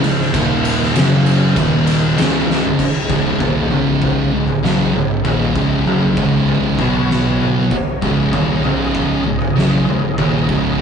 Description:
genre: stoner and doom metal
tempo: 97 BPM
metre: 4/4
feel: straight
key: unclear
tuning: A4 = 441 Hz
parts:
  - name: bright tonewheel organ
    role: sustained chords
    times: 0.0-10.8 s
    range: C#3 to D#5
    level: -27 LUFS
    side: left 2 dB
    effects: slow rotary speaker, chorus vibrato
  - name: thick fuzz guitar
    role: riff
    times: 0.0-10.8 s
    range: C#2 to B3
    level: -19 LUFS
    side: left 7 dB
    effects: distortion
  - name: thick fuzz guitar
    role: riff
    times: 0.0-10.8 s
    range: C#2 to B3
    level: -18 LUFS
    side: right 5 dB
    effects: distortion
  - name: fuzz picked electric bass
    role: bass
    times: 0.0-10.8 s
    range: C#1 to B1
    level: -26 LUFS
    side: left 1 dB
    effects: none
  - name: oversized low-tuned drum kit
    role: drums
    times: 0.0-10.6 s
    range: crash cymbal, kick drum, ride cymbal, snare drum, toms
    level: -18 LUFS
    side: equal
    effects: none
room: light reverb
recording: rough rehearsal-room recording, warm saturation, nothing above 11.0 kHz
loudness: -13 LUFS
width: side -7 dB against mid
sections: 0.0-2.8 A section; 2.8-10.8 B section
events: drum fill 2.5-2.8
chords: 0.3 D#5; 1.0 F#5; 1.6 D#5; 2.2 C#5; 6.8 B5; 8.0 C#5

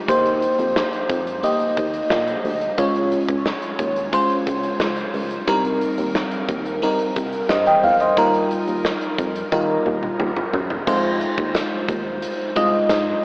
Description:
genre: 1980s-style pop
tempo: 89 BPM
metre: 4/4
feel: straight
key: F minor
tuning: A4 = 440 Hz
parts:
  - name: FM electric piano with soft pad layer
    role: accompaniment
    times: 0.0-13.2 s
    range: G3 to G5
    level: -19 LUFS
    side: equal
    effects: chorus, phaser, cassette tape, shimmer reverb
  - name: solid FM bass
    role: bass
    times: 0.1-13.1 s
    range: C2 to Eb3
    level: -26 LUFS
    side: equal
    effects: none
  - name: huge arena drum kit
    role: drums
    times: 0.1-13.1 s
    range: crash cymbal, hi-hat, kick drum, snare drum, tambourine, toms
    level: -26 LUFS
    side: equal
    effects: cassette tape
room: wet spring reverb, RT60 2.0 s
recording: home recording on cassette, AM radio sound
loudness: -18 LUFS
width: side -27 dB against mid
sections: 0.0-10.9 A section; 10.9-13.2 B section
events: drum fill 9.5-10.9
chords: 0.1 Eb6; 2.8 Db; 5.5 Cm7; 8.2 Ebadd9; 10.9 Fm7

